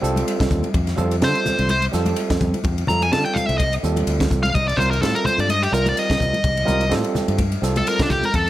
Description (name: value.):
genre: electric jazz fusion.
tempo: 126 BPM.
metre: 4/4.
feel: swing 55% on 16ths.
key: C dorian.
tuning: A4 = 438 Hz.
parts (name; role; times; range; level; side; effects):
overdriven tine electric piano; accompaniment; 0.0-8.3 s; G3 to Bb4; -24 LUFS; right 3 dB; wide subtle chorus.
fretless electric bass; bass; 0.0-8.5 s; C2 to D3; -22 LUFS; equal; none.
crisp fusion drum kit; drums; 0.0-8.5 s; hi-hat, kick drum, ride cymbal, snare drum; -25 LUFS; equal; none.
congas; percussion; 0.2-8.5 s; none; -28 LUFS; left 2 dB; none.
dark smooth lead guitar; melody; 1.2-8.5 s; D4 to Bb5; -21 LUFS; left 1 dB; overdrive.
room: little or no reverb.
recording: none.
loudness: -17 LUFS.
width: side -14 dB against mid.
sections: 0.0-8.5 A section.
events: lead electric guitar solo 0.0-8.5.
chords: 0.0 Cm; 0.7 Fadd9; 4.5 Cm7.